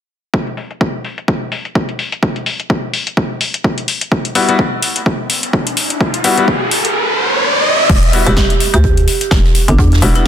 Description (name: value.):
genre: bass house.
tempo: 127 BPM.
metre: 4/4.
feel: swing 56% on 16ths.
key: E minor.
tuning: A4 = 441 Hz.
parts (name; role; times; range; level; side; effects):
electronic kick drum; drums; 0.3-9.9 s; none; -16 LUFS; equal; overdrive, high-pass filter on kick, studio reverb, high-pass filter on room.
big-room dance drum kit; drums; 0.5-10.2 s; crash cymbal, hi-hat, snare drum; -18 LUFS; left 3 dB; low-pass filter on hats, studio reverb, low-pass filter on cymbals, low-pass filter on snare.
riser; sound effects; 5.3-7.9 s; none; -16 LUFS; equal; none.
bright concert grand piano; stabs; 4.4-10.2 s; G3 to F#4; -18 LUFS; left 4 dB; sidechain pumping, dub echo.
hollow knocking FM bass; bass; 7.9-10.3 s; E1 to E2; -12 LUFS; equal; overdrive, sidechain pumping.
open jazz drum kit; drums; 7.9-10.3 s; hi-hat, snare drum; -26 LUFS; right 3 dB; sidechain pumping on hats, high-pass filter on hats, studio reverb, high-pass filter on snare, high-pass filter on room.
marimba with medium hard mallets; melody; 8.3-10.3 s; D4 to G4; -19 LUFS; right 5 dB; dub echo.
room: light reverb, small room ambience.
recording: dense, heavily limited modern master.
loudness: -12 LUFS.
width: side -10 dB against mid.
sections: 0.3-7.9 A section; 7.9-10.3 B section.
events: riser 5.3-7.9.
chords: 0.3 Emadd9.